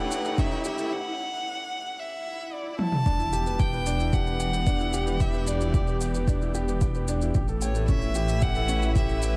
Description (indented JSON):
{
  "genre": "piano and strings electronica",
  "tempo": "112 BPM",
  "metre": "4/4",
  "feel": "straight",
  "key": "E dorian",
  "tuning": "A4 = 440 Hz",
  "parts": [
    { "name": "rich violin", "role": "melody", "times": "0.0-9.4 s", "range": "C#5 to A5", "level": "-34 LUFS", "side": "equal", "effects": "tape echo" },
    { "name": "dark chamber string section", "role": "sustained chords", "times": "0.0-9.4 s", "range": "E3 to E5", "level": "-38 LUFS", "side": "equal", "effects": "sidechain pumping" },
    { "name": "warm grand piano", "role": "riff", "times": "0.0-9.4 s", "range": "C#4 to G5", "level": "-35 LUFS", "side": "equal", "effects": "tape echo" },
    { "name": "dark detuned saw bass", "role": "bass", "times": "0.0-9.4 s", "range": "E1 to A1", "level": "-31 LUFS", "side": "equal", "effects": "sidechain pumping, high-pass filter" },
    { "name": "riser, swell and impact", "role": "sound effects", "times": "0.0-5.2 s", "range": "none", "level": "-39 LUFS", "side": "equal", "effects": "none" },
    { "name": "electronic shaker and toms", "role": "drums", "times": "0.1-9.3 s", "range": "none", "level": "-36 LUFS", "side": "equal", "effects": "none" },
    { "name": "electronic kick drum", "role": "drums", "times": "0.4-9.1 s", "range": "none", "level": "-28 LUFS", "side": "equal", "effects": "none" }
  ],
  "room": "light reverb",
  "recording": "none",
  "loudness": "-26 LUFS",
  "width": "mono",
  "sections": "0.0-3.1 A section; 3.1-9.4 B section",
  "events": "build-up 0.0-3.1; riser 0.0-0.9; break 0.9-3.1; swell 2.1-3.1; drum fill 2.8; drop 3.1-9.4; impact 3.1-5.2",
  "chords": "0.0 A7; 0.9 N.C.; 3.1 Em7; 7.3 A7"
}